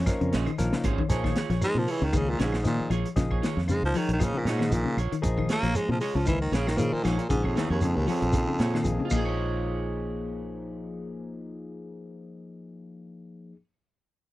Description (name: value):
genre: afrobeat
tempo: 116 BPM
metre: 4/4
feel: swing 55% on 16ths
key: Bb minor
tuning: A4 = 440 Hz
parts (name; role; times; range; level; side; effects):
- raspy tenor saxophone; melody; 0.0-0.6 s; Db4; -41 LUFS; right 1 dB; none
- edgy alto saxophone; second line; 0.0-0.6 s; Db4; -39 LUFS; right 3 dB; none
- barky tine electric piano; accompaniment; 0.0-13.6 s; F3 to F5; -34 LUFS; left 3 dB; phaser
- fingered electric bass; bass; 0.0-13.6 s; Ab1 to Bb2; -28 LUFS; equal; none
- semi-hollow electric guitar; arpeggios; 0.1-9.4 s; Bb2 to F3; -32 LUFS; left 5 dB; none
- vintage drum kit; drums; 0.1-9.2 s; crash cymbal, hi-hat, kick drum, snare drum; -31 LUFS; equal; none
- claves; percussion; 0.1-9.5 s; none; -45 LUFS; equal; none
- shekere; percussion; 0.1-9.5 s; none; -32 LUFS; right 1 dB; none
- electric guitar at the edge of break-up; stabs; 0.3-13.7 s; Db4 to Db5; -35 LUFS; right 8 dB; none
- raspy baritone saxophone; melody; 1.6-9.1 s; Eb2 to Bb3; -28 LUFS; equal; none
room: little or no reverb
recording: dry, close 1970s-style studio recording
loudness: -24 LUFS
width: side -16 dB against mid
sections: 0.0-1.1 A section; 1.1-9.4 B section; 9.4-13.5 C section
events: tine electric piano fill 0.0-1.1; baritone saxophone solo 1.1-9.4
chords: 0.0 Bbm9; 1.1 Bbm7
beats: 0.07 0.58 | 1.10 1.61 2.13 2.64 | 3.16 3.68 4.19 4.71 | 5.23 5.75 6.26 6.78 | 7.30 7.81 8.33 8.85 | 9.37 9.88 10.40 10.92 | 11.44 11.95 12.47 12.99